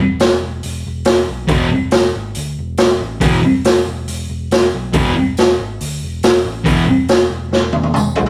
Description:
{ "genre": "garage rock duo or trio", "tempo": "139 BPM", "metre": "4/4", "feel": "straight", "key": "E mixolydian", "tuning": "A4 = 440 Hz", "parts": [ { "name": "hollow-body short-scale picked electric bass", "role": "bass", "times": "0.0-8.3 s", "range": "E1 to D2", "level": "-26 LUFS", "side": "equal", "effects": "none" }, { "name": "raw garage drum kit", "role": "drums", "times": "0.2-8.3 s", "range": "hi-hat, kick drum, snare drum, toms", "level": "-17 LUFS", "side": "equal", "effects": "none" }, { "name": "tambourine", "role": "percussion", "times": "0.2-8.1 s", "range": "none", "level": "-38 LUFS", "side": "equal", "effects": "none" }, { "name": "thick fuzz guitar", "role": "riff", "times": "1.5-6.8 s", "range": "E2 to E3", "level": "-16 LUFS", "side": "equal", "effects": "distortion" } ], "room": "moderate stone room reverb, RT60 1.0 s", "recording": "rough rehearsal-room recording", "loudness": "-16 LUFS", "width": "mono", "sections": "0.0-8.3 A section", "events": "drum fill 7.5-8.3", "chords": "0.0 E5", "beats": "0.20 0.63 1.06 | 1.49 1.92 2.35 2.78 | 3.21 3.65 4.08 4.51 | 4.94 5.37 5.80 6.23 | 6.66 7.09 7.52 7.95" }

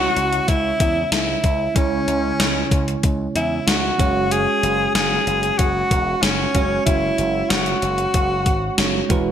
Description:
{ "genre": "1980s-style pop", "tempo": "94 BPM", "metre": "4/4", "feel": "straight", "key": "unclear", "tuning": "A4 = 441 Hz", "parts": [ { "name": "bright alto saxophone", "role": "melody", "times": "0.0-9.1 s", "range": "C#4 to G#4", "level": "-20 LUFS", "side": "left 1 dB", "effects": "digital delay" }, { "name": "bell-like tine electric piano", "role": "accompaniment", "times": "0.0-9.3 s", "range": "C#3 to C#5", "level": "-25 LUFS", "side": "right 5 dB", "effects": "none" }, { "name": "slap bass with an envelope filter", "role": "bass", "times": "0.0-9.3 s", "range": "E1 to E2", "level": "-26 LUFS", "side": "left 1 dB", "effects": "none" }, { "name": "gated 80s digital drum machine", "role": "drums", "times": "0.2-9.2 s", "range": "hi-hat, kick drum, snare drum", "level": "-20 LUFS", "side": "left 1 dB", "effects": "gated reverb, gated reverb snare, overdrive" } ], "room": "moderate plate reverb, RT60 1.6 s, digital ambience", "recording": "bright 1980s-style digital production", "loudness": "-17 LUFS", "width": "side -9 dB against mid", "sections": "0.0-9.3 A section", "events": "none", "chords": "0.0 C#m; 4.0 F#sus2", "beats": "0.48 1.12 | 1.76 2.40 3.04 3.67 | 4.31 4.95 5.59 6.23 | 6.87 7.50 8.14 8.78" }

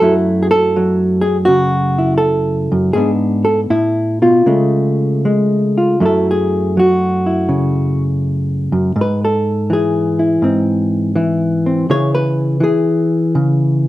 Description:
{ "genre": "solo jazz", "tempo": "81 BPM", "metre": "4/4", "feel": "swing 68% on 8ths, rubato", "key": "F# minor", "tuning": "A4 = 440 Hz", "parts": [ { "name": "hollow-body jazz guitar", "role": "solo", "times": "0.0-13.9 s", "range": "F#2 to C#5", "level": "-12 LUFS", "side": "equal", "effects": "none" } ], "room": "wet studio reverb, RT60 0.6 s", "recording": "rough home demo mix", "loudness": "-12 LUFS", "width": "side -15 dB against mid", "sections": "0.0-6.0 A section; 6.0-13.9 B section", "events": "hollow-body jazz guitar solo 6.0-13.9", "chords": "0.0 F#m7; 2.9 G#dim; 4.5 C#; 6.0 F#m7; 9.0 G#aug; 11.9 C#m", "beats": "| 0.01 0.75 1.48 2.21 | 2.95 3.70 4.46 5.24 | 6.01 6.76 7.51 8.24 | 8.98 9.71 10.43 11.15 | 11.88 12.61 13.35" }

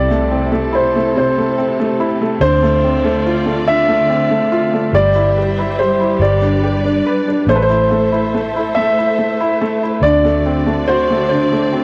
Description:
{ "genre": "six-eight pop ballad", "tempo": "47 BPM (dotted quarters)", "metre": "6/8", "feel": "straight", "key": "unclear", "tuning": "A4 = 440 Hz", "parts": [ { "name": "dark baby grand piano", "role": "melody", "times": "0.0-11.8 s", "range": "B4 to E5", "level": "-19 LUFS", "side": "equal", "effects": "tape echo" }, { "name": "felt-muted upright piano", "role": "accompaniment", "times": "0.0-11.8 s", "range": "C3 to B4", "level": "-19 LUFS", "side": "equal", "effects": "cassette tape" }, { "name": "warm studio string section", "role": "sustained chords", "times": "0.0-11.8 s", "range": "C3 to E5", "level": "-26 LUFS", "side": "equal", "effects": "cassette tape" }, { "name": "vintage muted fingered electric bass", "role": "bass", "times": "0.0-11.8 s", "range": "G1 to D2", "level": "-22 LUFS", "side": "equal", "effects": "none" } ], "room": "light reverb, studio ambience", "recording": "home recording on cassette", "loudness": "-15 LUFS", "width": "mono", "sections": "0.0-11.8 A section", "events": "none", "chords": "0.0 Am/C; 2.4 Dm7; 4.9 C/G; 6.2 G; 7.5 Am; 10.0 D7", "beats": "1.15 | 2.41 3.67 | 4.93 6.20 | 7.47 8.74 | 10.02 11.29" }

